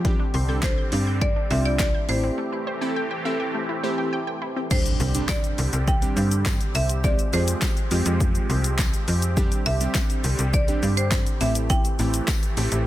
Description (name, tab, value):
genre	dance-pop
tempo	103 BPM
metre	4/4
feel	straight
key	C major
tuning	A4 = 441 Hz
part	glassy digital keys	accompaniment	0.0-12.9 s	G3 to A4	-29 LUFS	right 2 dB	chorus, sidechain pumping
part	filtered supersaw swell	sustained chords	0.0-12.9 s	D3 to G4	-31 LUFS	equal	sidechain pumping
part	wide unison pluck	arpeggios	0.0-4.7 s	G3 to G6	-33 LUFS	left 1 dB	sidechain pumping, ping-pong delay
part	slap-like FM bass	bass	0.0-12.9 s	A1 to F3	-24 LUFS	equal	sidechain pumping
part	deep house drum kit	drums	0.0-12.9 s	crash cymbal, handclaps, hi-hat, kick drum, shaker, snare drum	-24 LUFS	equal	none
part	marimba with hard mallets	melody	0.6-12.2 s	C5 to G5	-29 LUFS	equal	ping-pong delay
part	impact	sound effects	4.7-7.0 s	none	-33 LUFS	equal	none
part	tambourine	percussion	5.3-12.4 s	none	-40 LUFS	left 11 dB	none
room	digital ambience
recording	none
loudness	-20 LUFS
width	side -14 dB against mid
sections	0.0-4.7 A section; 4.7-12.9 B section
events	break 2.4-4.7; impact 4.7-7.0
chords	0.1 Csus2; 2.1 Am7; 4.7 Csus2; 7.0 Fmadd9; 9.4 Csus2; 11.4 Am7